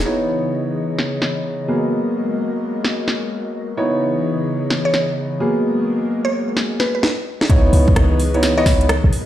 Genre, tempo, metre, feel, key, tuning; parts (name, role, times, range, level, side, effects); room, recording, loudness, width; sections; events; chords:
UK garage, two-step garage; 129 BPM; 4/4; swing 64% on 16ths; C# dorian; A4 = 440 Hz
mallet-like synth pluck; melody; 0.0-0.1, 4.9-8.7 s; B4 to C#5; -23 LUFS; equal; chorus, digital delay
airy breathy pad; sustained chords; 0.0-9.3 s; C#3 to D#5; -25 LUFS; left 2 dB; chorus, sidechain pumping
short 808-style bass; bass; 0.0, 7.5-9.1 s; B1 to C#2; -16 LUFS; equal; tube saturation
warm concert grand piano; stabs; 0.1-8.9 s; F#3 to D#5; -20 LUFS; equal; digital delay
house drum kit; drums; 1.0-9.2 s; hi-hat, rim click, snare drum; -22 LUFS; equal; low-pass filter on hats, small room reverb, low-pass filter on snare, low-pass filter on perc
electronic kick drum; drums; 7.5-8.8 s; -16 LUFS; equal; small room reverb
moderate digital room reverb, RT60 1.1 s; played on a big sound system in a bare room, stone room reverb; -16 LUFS; side -12 dB against mid
0.1-7.5 A section; 7.5-9.3 B section
drum fill 7.0-7.5; drop 7.5-9.3
0.1 C#m9; 1.7 G#m9; 3.8 C#m9; 5.4 G#m9; 7.5 C#m9